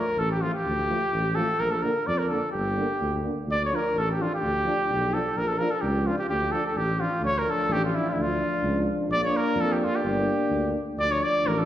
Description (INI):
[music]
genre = balkan folk, Balkan brass band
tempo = 128 BPM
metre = 2/4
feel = straight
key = D harmonic minor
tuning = A4 = 440 Hz
[part]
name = warm trumpet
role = melody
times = 0.0-11.7 s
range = E4 to D5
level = -26 LUFS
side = equal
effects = none
[part]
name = mellow euphonium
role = accompaniment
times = 0.0-11.7 s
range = D3 to Bb3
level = -34 LUFS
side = right 3 dB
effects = none
[part]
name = warm euphonium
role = accompaniment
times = 0.0-11.7 s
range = A3 to D4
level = -32 LUFS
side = left 3 dB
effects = none
[part]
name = mellow tuba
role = bass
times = 0.2-11.7 s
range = G1 to F2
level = -29 LUFS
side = equal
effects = none
[sound]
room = wet recital hall reverb, RT60 1.6 s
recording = heard from further back in the room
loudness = -23 LUFS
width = side -12 dB against mid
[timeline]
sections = 0.0-7.2 A section; 7.2-11.7 A section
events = none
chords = 0.0 Dm; 1.6 Bb; 2.5 Gm; 3.5 Dm; 5.4 Bb; 6.3 Dm; 9.1 Bb; 10.0 Gm; 11.0 Dm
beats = 0.20 | 0.67 1.14 | 1.61 2.08 | 2.54 3.01 | 3.48 3.95 | 4.42 4.89 | 5.35 5.82 | 6.29 6.76 | 7.22 7.69 | 8.16 8.63 | 9.09 9.56 | 10.03 10.49 | 10.96 11.43